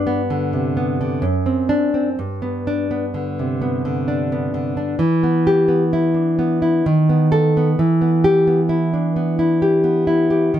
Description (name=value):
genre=romantic piece for solo classical guitar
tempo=64 BPM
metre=3/4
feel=rubato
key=unclear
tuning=A4 = 440 Hz
part: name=nylon-string guitar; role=solo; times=0.0-10.6 s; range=F#2 to A4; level=-16 LUFS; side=equal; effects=none
room=light reverb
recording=dark, warm production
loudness=-16 LUFS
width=side -11 dB against mid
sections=0.0-10.6 A section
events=none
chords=0.0 G; 1.2 D7/F#; 2.2 G; 5.0 Em; 6.8 B7/D#; 7.8 Em